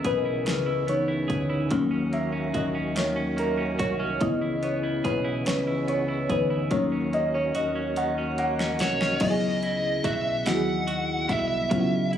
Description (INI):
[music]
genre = slow six-eight R&B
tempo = 48 BPM (dotted quarters)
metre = 6/8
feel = straight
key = C# dorian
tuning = A4 = 440 Hz
[part]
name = semi-hollow electric guitar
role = second line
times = 0.0-12.2 s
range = C#3 to G#4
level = -33 LUFS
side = right 3 dB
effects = spring reverb
[part]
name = mellow FM electric piano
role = accompaniment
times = 0.0-12.2 s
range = E3 to F#5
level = -26 LUFS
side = left 1 dB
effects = chorus, phaser
[part]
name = tonewheel organ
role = sustained chords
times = 0.0-9.2 s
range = C#3 to F#4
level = -32 LUFS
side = equal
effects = overdrive, chorus vibrato, slow rotary speaker
[part]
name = pop drum kit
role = drums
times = 0.0-12.2 s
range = crash cymbal, hi-hat, kick drum, snare drum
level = -31 LUFS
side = equal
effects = none
[part]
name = deep dub fingered electric bass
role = bass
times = 0.1-12.2 s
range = B1 to D#2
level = -34 LUFS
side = equal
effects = none
[part]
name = fuzz lead guitar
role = melody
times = 8.8-12.1 s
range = C#5 to F#5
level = -27 LUFS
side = right 1 dB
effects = distortion
[sound]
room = little or no reverb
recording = recorded on a phone in the room, club reverb, compression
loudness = -23 LUFS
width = side -9 dB against mid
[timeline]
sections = 0.0-9.2 A section; 9.2-12.2 B section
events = FM electric piano solo 0.0-9.2; drum fill 6.7-9.2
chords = 0.0 C#m7; 1.7 D#m7; 4.2 C#m7; 6.7 D#m7; 9.2 C#m11